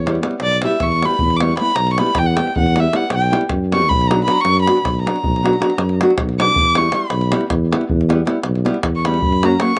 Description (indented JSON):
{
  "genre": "balkan folk, Balkan wedding band",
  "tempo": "314 BPM (eighths)",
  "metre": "7/8",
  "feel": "straight",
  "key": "E dorian sharp4",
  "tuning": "A4 = 440 Hz",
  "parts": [
    { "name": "dark violin", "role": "melody", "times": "0.0-9.8 s", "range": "D5 to D6", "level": "-20 LUFS", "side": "equal", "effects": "none" },
    { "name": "mellow tuba", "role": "bass", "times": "0.0-9.8 s", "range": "B1 to F#2", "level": "-21 LUFS", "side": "equal", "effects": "none" },
    { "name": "nylon-string guitar", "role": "accompaniment", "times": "0.1-9.7 s", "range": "F#3 to G4", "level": "-22 LUFS", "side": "equal", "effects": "slapback echo" },
    { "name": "davul", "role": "percussion", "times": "0.1-9.8 s", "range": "none", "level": "-25 LUFS", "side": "equal", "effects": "none" }
  ],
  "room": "little or no reverb",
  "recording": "recorded outdoors, with no room sound, nothing above 10.3 kHz",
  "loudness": "-17 LUFS",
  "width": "mono",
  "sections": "0.0-9.8 A section",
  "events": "violin solo 0.0-9.8",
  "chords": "0.0 Em; 3.9 Bm; 6.6 Em; 9.2 F#"
}